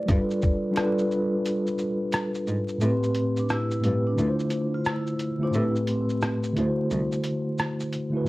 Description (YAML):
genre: lo-fi hip hop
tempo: 88 BPM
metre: 4/4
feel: swing 63% on 16ths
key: unclear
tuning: A4 = 439 Hz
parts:
  - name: vibraphone with soft mallets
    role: melody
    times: 0.0-6.5 s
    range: C4 to D5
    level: -34 LUFS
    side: equal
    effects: cassette tape, tape echo
  - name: mellow tine electric piano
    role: accompaniment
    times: 0.0-8.3 s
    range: A2 to C5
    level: -25 LUFS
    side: equal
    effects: medium stereo tremolo, cassette tape
  - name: dark cello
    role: bass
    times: 0.1-7.0 s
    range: C2 to A2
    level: -28 LUFS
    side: equal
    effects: none
  - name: lo-fi sampler-style drum kit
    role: drums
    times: 0.1-8.3 s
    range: hi-hat, kick drum, rim click, shaker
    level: -28 LUFS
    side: equal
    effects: cassette tape
  - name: finger snap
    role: percussion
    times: 0.8-2.3 s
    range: none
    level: -46 LUFS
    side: right 3 dB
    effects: none
room: moderate studio reverb, RT60 0.6 s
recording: home recording on cassette, vinyl crackle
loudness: -23 LUFS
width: side -19 dB against mid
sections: 0.0-2.8 A section; 2.8-8.3 B section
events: break 1.4-2.8; kick muted 2.8-8.3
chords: 0.1 G9; 2.8 Am7; 4.2 Dm7; 5.5 Am7; 6.6 D7